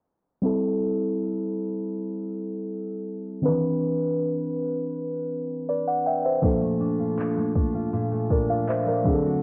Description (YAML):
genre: contemporary R&B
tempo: 80 BPM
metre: 4/4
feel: straight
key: unclear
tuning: A4 = 436 Hz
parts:
  - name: muted felt-like synth keys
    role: accompaniment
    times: 0.4-9.4 s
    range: D#3 to G5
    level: -27 LUFS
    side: equal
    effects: chorus, cassette tape
  - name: fingerpicked steel-string acoustic guitar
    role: arpeggios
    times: 6.4-9.4 s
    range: Bb2 to F#4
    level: -31 LUFS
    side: equal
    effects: cassette tape
  - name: smooth R&B drum kit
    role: drums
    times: 6.4-9.2 s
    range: handclaps, kick drum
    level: -30 LUFS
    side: equal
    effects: cassette tape
room: light reverb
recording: home recording on cassette, low-pass filter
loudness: -26 LUFS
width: mono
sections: 0.4-9.4 A section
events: filter sweep 0.4-9.4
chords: 0.4 Am7; 3.4 Cmaj9; 6.4 Bbmaj7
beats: | 0.43 1.18 1.93 2.68 | 3.43 4.18 4.93 5.68 | 6.43 7.18 7.93 8.68